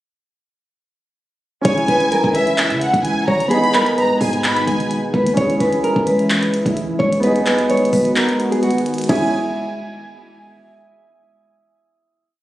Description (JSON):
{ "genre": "hip hop, trap", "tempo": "129 BPM", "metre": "4/4", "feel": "half-time", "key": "C# dorian", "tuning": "A4 = 440 Hz", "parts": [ { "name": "dark baby grand piano", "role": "accompaniment", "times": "1.6-9.3 s", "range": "B3 to G#4", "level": "-21 LUFS", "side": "right 1 dB", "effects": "none" }, { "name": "dark analog pad", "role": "sustained chords", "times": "2.1-9.3 s", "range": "B2 to F#4", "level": "-22 LUFS", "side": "equal", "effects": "chorus" }, { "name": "warm 808-style bass", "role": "bass", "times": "1.6-9.5 s", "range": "F#1 to C#3", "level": "-27 LUFS", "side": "equal", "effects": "none" }, { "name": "glitchy drum kit", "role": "drums", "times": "1.6-9.2 s", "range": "crash cymbal, handclaps, hi-hat, kick drum", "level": "-23 LUFS", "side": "equal", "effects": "none" }, { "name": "nylon-string guitar", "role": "melody", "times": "1.7-9.3 s", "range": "E4 to C#5", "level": "-20 LUFS", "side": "equal", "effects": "tape echo" }, { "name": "warm studio violin section", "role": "second line", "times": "1.7-4.9, 9.1-9.3 s", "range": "E5 to B5", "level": "-20 LUFS", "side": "equal", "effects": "tape echo" } ], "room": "light reverb", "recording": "recorded on a phone in the room, studio reverb", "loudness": "-14 LUFS", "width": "side -15 dB against mid", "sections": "1.6-9.1 verse; 9.1-11.0 final chord", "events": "break 8.2-9.1", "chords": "1.6 C#m; 3.5 G#m; 5.4 C#m; 7.2 B6; 9.1 C#m" }